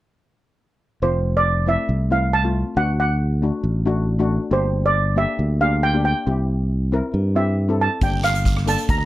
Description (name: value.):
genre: calypso.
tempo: 137 BPM.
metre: 4/4.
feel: straight.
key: F major.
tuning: A4 = 440 Hz.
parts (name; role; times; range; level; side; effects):
steel pan; melody; 1.0-9.0 s; C5 to Bb5; -21 LUFS; right 2 dB; none.
steel pan; accompaniment; 1.0-8.9 s; A3 to Bb4; -26 LUFS; left 4 dB; none.
fingered electric bass; bass; 1.0-9.1 s; F1 to G2; -20 LUFS; equal; none.
street-band drum kit; drums; 8.0-9.0 s; hi-hat, kick drum, rim click; -22 LUFS; equal; none.
guiro; percussion; 8.0-9.1 s; none; -34 LUFS; right 5 dB; none.
room: little or no reverb.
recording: dark, warm production.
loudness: -18 LUFS.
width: side -15 dB against mid.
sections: 1.0-9.1 A section.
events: none.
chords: 1.0 Fmaj7; 2.8 D; 4.5 Gm; 6.3 C7; 8.0 Gm7.